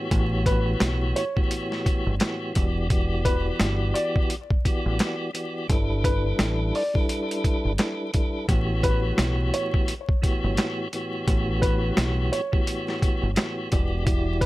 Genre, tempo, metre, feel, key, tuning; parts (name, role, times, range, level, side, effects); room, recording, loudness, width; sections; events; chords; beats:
hip hop, boom-bap hip-hop; 86 BPM; 4/4; swing 60% on 16ths; A4 = 440 Hz
tonewheel organ; accompaniment; 0.0-14.5 s; A2 to D5; -28 LUFS; equal; overdrive, fast rotary speaker, cassette tape, high-pass filter, low-pass filter
deep dub fingered electric bass; bass; 0.1-14.5 s; E1 to B1; -25 LUFS; equal
boom bap sampler-style drum kit; drums; 0.1-14.5 s; hi-hat, kick drum, snare drum; -24 LUFS; equal
warm upright piano; melody; 0.5-14.5 s; B4 to D5; -30 LUFS; equal; high-pass filter, low-pass filter, ping-pong delay
light reverb; vinyl crackle; -22 LUFS; side -18 dB against mid
0.0-14.5 A section
0.0 A13; 2.6 Em7; 5.7 G69; 8.5 A13; 13.7 Em7
| 0.11 0.81 1.51 2.21 | 2.90 3.60 4.30 5.00 | 5.70 6.39 7.09 7.79 | 8.48 9.18 9.88 10.58 | 11.28 11.97 12.67 13.37 | 14.07